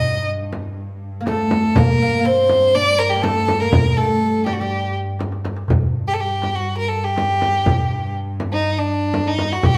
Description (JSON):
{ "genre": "Arabic maqam ensemble", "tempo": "122 BPM", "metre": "4/4", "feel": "straight", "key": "G maqam nahawand", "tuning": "A4 = 440 Hz", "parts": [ { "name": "clear violin", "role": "melody", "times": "0.0-9.8 s", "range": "D4 to Eb5", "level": "-21 LUFS", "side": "equal", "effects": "none" }, { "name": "oud", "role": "second line", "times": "0.0-4.9 s", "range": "G3 to Eb4", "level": "-24 LUFS", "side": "equal", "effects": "none" }, { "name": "warm studio cello section", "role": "drone", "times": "0.0-9.8 s", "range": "G2", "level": "-28 LUFS", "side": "equal", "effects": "none" }, { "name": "darbuka", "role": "percussion", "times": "0.0-9.8 s", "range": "none", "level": "-24 LUFS", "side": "equal", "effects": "none" }, { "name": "frame drum", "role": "percussion", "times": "0.5-9.8 s", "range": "none", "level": "-25 LUFS", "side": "equal", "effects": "none" } ], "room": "wet stone room reverb, RT60 1.2 s", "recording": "band playing live in one room", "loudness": "-19 LUFS", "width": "mono", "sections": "0.0-5.7 A section; 5.7-9.8 B section", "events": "drum fill 5.2-5.7", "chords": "none", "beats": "0.28 0.78 1.27 | 1.76 2.25 2.74 3.23 | 3.73 4.22 4.71 5.20 | 5.70 6.19 6.68 7.17 | 7.67 8.16 8.65 9.15 | 9.64" }